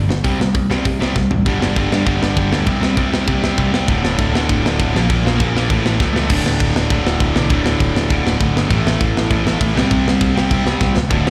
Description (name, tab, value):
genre	punk rock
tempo	199 BPM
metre	4/4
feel	straight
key	unclear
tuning	A4 = 441 Hz
part	cranked stack guitar	riff	0.0-11.3 s	D2 to C4	-22 LUFS	equal	overdrive, slapback echo
part	overdriven semi-hollow guitar	riff	0.0-11.3 s	D2 to C4	-24 LUFS	equal	slapback echo
part	modern bright picked electric bass	bass	0.0-11.3 s	D1 to C3	-23 LUFS	equal	none
part	tight metal drum kit	drums	0.1-11.3 s	crash cymbal, hi-hat, kick drum, snare drum, toms	-21 LUFS	equal	none
room	little or no reverb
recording	live gig heard through the venue's PA, recital hall reverb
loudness	-16 LUFS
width	mono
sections	0.0-1.5 A section; 1.5-6.3 B section; 6.3-11.3 C section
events	drum fill 1.2-1.5, 6.0-6.3, 10.8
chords	0.2 C5; 1.5 G5; 2.7 C5; 3.9 D5; 4.9 Bb5; 5.7 A; 6.3 D5; 8.7 A5; 9.8 C5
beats	| 0.25 0.55 0.85 1.16 | 1.46 1.76 2.07 2.37 | 2.67 2.98 3.28 3.58 | 3.88 4.19 4.49 4.79 | 5.09 5.39 5.70 6.00 | 6.30 6.60 6.90 7.20 | 7.50 7.80 8.11 8.41 | 8.71 9.01 9.31 9.61 | 9.91 10.21 10.51 10.81 | 11.11